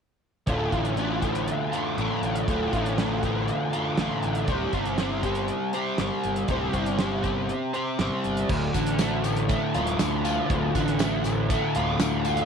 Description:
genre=psychedelic rock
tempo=120 BPM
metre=4/4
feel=straight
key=D minor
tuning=A4 = 440 Hz
part: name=overdriven semi-hollow guitar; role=riff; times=0.5-12.5 s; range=D2 to C5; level=-25 LUFS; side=equal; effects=flanger
part: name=fuzz fingered electric bass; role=bass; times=0.5-12.4 s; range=D1 to D2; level=-30 LUFS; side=equal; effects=overdrive
part: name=damped 70s drum kit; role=drums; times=0.5-12.5 s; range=crash cymbal, hi-hat, kick drum, snare drum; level=-30 LUFS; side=right 2 dB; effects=none
part: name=tambourine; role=percussion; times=8.7-12.4 s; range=none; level=-41 LUFS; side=left 15 dB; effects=none
room=light reverb, small room ambience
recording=1960s-style stereo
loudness=-23 LUFS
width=side -6 dB against mid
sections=0.5-8.5 A section; 8.5-12.5 B section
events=none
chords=0.5 Dm; 4.5 C5; 8.5 Dm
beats=| 0.47 0.97 1.47 1.98 | 2.48 2.98 3.48 3.98 | 4.48 4.99 5.49 5.99 | 6.49 6.99 7.49 7.99 | 8.49 9.00 9.50 10.00 | 10.50 11.00 11.50 12.00

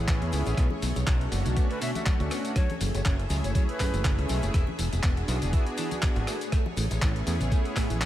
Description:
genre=nu-disco, nu disco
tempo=121 BPM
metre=4/4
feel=swing 56% on 16ths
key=B dorian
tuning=A4 = 441 Hz
part: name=warm analog pad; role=accompaniment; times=0.0-8.1 s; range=A3 to G#4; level=-34 LUFS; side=equal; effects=chorus, cassette tape, analog delay
part: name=string machine, full ensemble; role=sustained chords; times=0.0-8.1 s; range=D3 to E5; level=-37 LUFS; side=equal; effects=ensemble chorus, sidechain pumping
part: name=modern bright fingered electric bass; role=bass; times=0.0-8.0 s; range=E1 to E2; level=-28 LUFS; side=equal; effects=sidechain pumping
part: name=clean electric guitar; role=riff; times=0.1-8.1 s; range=F#2 to E4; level=-38 LUFS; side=right 2 dB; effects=analog chorus, analog delay
part: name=dusty soul sampler-style drum kit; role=drums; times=0.1-8.1 s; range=handclaps, hi-hat, rim click, tambourine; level=-34 LUFS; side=left 1 dB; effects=none
part: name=electronic kick drum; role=drums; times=0.1-7.9 s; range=none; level=-25 LUFS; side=equal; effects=none
part: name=maracas, bongos and congas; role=percussion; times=0.1-8.1 s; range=none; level=-39 LUFS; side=left 3 dB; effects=none
part: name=bright silver concert flute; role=melody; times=1.7-4.2 s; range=B4 to E5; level=-38 LUFS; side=right 1 dB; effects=tape echo
room=little or no reverb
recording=echo-heavy mix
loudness=-24 LUFS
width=side -13 dB against mid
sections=0.0-8.1 A section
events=none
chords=0.0 Amaj7; 0.6 Bm9; 2.6 F#m9; 4.5 E7; 6.3 Amaj7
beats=0.08 | 0.57 1.07 1.57 2.06 | 2.56 3.05 3.55 4.04 | 4.54 5.04 5.53 6.03 | 6.52 7.02 7.52 8.01

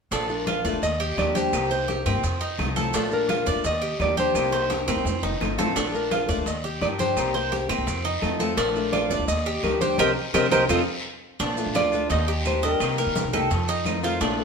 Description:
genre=latin, Cuban son and guajira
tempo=170 BPM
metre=4/4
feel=straight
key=Bb major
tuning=A4 = 440 Hz
part: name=nylon-string guitar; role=melody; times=0.1-13.3 s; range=F4 to Eb5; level=-26 LUFS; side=left 1 dB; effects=none
part: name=picked old ladder-braced acoustic guitar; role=accompaniment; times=0.1-14.4 s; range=C3 to G4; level=-29 LUFS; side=left 3 dB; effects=none
part: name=Cuban tres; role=arpeggios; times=0.1-14.4 s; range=C4 to Eb5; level=-27 LUFS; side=right 3 dB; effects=none
part: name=upright bass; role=bass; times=0.1-14.4 s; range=F1 to C3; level=-30 LUFS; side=equal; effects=none
part: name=bongos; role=percussion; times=0.1-14.4 s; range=none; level=-33 LUFS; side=left 2 dB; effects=none
part: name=congas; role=percussion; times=0.1-14.4 s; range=none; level=-34 LUFS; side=left 2 dB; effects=none
part: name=guiro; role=percussion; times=0.1-14.4 s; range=none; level=-38 LUFS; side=left 2 dB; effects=none
part: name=maracas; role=percussion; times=0.1-14.4 s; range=none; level=-39 LUFS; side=right 5 dB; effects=none
part: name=claves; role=percussion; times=0.5-14.0 s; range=none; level=-34 LUFS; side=right 9 dB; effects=none
room=wet stone room reverb, RT60 1.2 s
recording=band playing live in one room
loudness=-21 LUFS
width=side -5 dB against mid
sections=0.1-11.4 A section; 11.4-14.4 B section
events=drum fill 4.3-5.8, 10.3-11.4; band accent 10.0-11.4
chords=0.1 Bbmaj7; 0.8 Ebmaj7; 1.5 Cm7; 2.2 F7; 2.9 Bbmaj7; 3.6 Ebmaj7; 4.3 Cm7; 5.1 F7; 5.8 Bbmaj7; 6.5 Ebmaj7; 7.2 Cm7; 7.9 F7; 8.6 Bbmaj7; 9.3 Ebmaj7; 10.0 Cm7; 10.7 F7; 11.4 Bbmaj7; 12.1 Ebmaj7; 12.8 Cm7; 13.5 F7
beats=| 0.12 0.47 0.82 1.18 | 1.53 1.88 2.23 2.59 | 2.94 3.29 3.65 4.00 | 4.35 4.70 5.05 5.41 | 5.76 6.11 6.46 6.82 | 7.17 7.52 7.87 8.22 | 8.58 8.93 9.28 9.63 | 9.99 10.34 10.69 11.04 | 11.40 11.75 12.10 12.45 | 12.81 13.16 13.51 13.86 | 14.21

